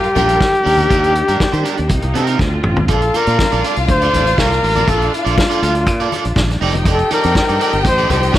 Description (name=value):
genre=disco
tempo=121 BPM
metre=4/4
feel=straight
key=unclear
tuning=A4 = 436 Hz
part: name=breathy flugelhorn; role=melody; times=0.0-8.4 s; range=F4 to C5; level=-17 LUFS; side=left 1 dB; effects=none
part: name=warm symphonic violin section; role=second line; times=0.0-8.4 s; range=F4 to G5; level=-22 LUFS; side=left 2 dB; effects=none
part: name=electric guitar at the edge of break-up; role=accompaniment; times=0.0-8.4 s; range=C4 to F5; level=-22 LUFS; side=right 7 dB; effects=lush chorus
part: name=rich studio string section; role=sustained chords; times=0.0-8.4 s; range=C3 to Bb4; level=-25 LUFS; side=left 1 dB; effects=none
part: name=vintage drum kit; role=drums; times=0.0-8.4 s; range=hi-hat, kick drum, snare drum, toms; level=-19 LUFS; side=equal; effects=none
part: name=fingered electric bass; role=bass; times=0.2-8.4 s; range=F1 to Eb3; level=-18 LUFS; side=equal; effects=none
part: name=congas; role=percussion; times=0.2-8.4 s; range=none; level=-26 LUFS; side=left 4 dB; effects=none
room=small room ambience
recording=none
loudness=-12 LUFS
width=side -13 dB against mid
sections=0.0-2.9 A section; 2.9-8.4 B section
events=drum fill 2.4-2.9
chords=0.0 Gm7; 0.7 Ebmaj7; 1.9 Cm7; 2.4 Dm7; 2.9 Bbmaj7; 6.6 F13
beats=0.41 | 0.90 1.40 1.90 2.39 | 2.89 3.38 3.88 4.38 | 4.87 5.37 5.86 6.36 | 6.85 7.35 7.84 8.34